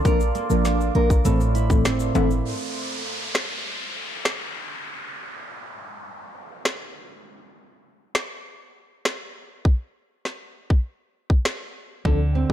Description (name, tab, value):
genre	dancehall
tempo	100 BPM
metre	4/4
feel	straight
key	unclear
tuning	A4 = 439 Hz
part	deep mellow chord stab	accompaniment	0.0-2.3, 12.0-12.5 s	E3 to Bb4	-24 LUFS	equal	chorus, phaser, sidechain pumping
part	deep dark ambient pad	sustained chords	0.0-2.4, 12.1-12.5 s	A4 to D6	-31 LUFS	right 2 dB	chorus, built-in reverb, sidechain pumping
part	nylon-string guitar	arpeggios	0.0-3.0, 12.1-12.5 s	A2 to Bb4	-26 LUFS	right 4 dB	none
part	clean 808-style bass	bass	0.1-2.4, 12.1-12.5 s	G1 to D2	-23 LUFS	equal	none
part	island pop drum kit	drums	0.1-12.5 s	finger snaps, hi-hat, kick drum, snare drum	-22 LUFS	equal	none
part	egg shaker and timbales	percussion	0.1-2.4 s	none	-34 LUFS	left 9 dB	none
part	downlifter	sound effects	2.5-7.3 s	none	-32 LUFS	equal	none
room	light reverb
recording	dark, warm production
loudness	-21 LUFS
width	side -11 dB against mid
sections	0.0-2.5 A section; 2.5-12.5 B section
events	none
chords	0.1 Bb; 1.3 Am; 2.5 N.C.